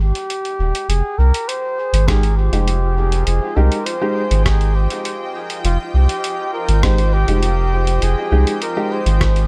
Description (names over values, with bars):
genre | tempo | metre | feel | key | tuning
ambient dub | 101 BPM | 4/4 | straight | F minor | A4 = 435 Hz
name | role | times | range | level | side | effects
trumpet with bucket mute | melody | 0.0-9.5 s | F4 to C5 | -25 LUFS | equal | dub echo
soft dub sub bass | bass | 0.0-9.5 s | Eb1 to C2 | -17 LUFS | equal | none
lo-fi sampler-style drum kit | drums | 0.2-9.5 s | hi-hat, rim click | -28 LUFS | equal | dub echo
granular cloud pad | sustained chords | 2.0-9.5 s | F4 to G5 | -31 LUFS | equal | built-in reverb
dark upright piano | stabs | 2.1-9.0 s | Ab3 to G4 | -28 LUFS | equal | dub echo
electronic kick drum | drums | 2.1-9.3 s | none | -24 LUFS | equal | none
room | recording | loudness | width
digital ambience | none | -18 LUFS | mono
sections
0.9-9.5 A section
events
none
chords
0.0 Fm9 (rootless); 0.9 Fm9